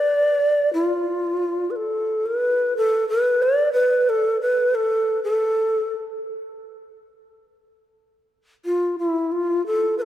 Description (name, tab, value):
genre	japanese traditional, Japanese chamber music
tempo	61 BPM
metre	2/4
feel	rubato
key	unclear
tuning	A4 = 440 Hz
part	breathy mellow long shakuhachi	solo	0.0-10.1 s	E4 to D5	-19 LUFS	equal	none
room	moderate church reverb, RT60 3.7 s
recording	none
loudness	-19 LUFS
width	side -12 dB against mid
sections	0.0-2.3 A section; 2.3-10.1 B section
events	none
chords	none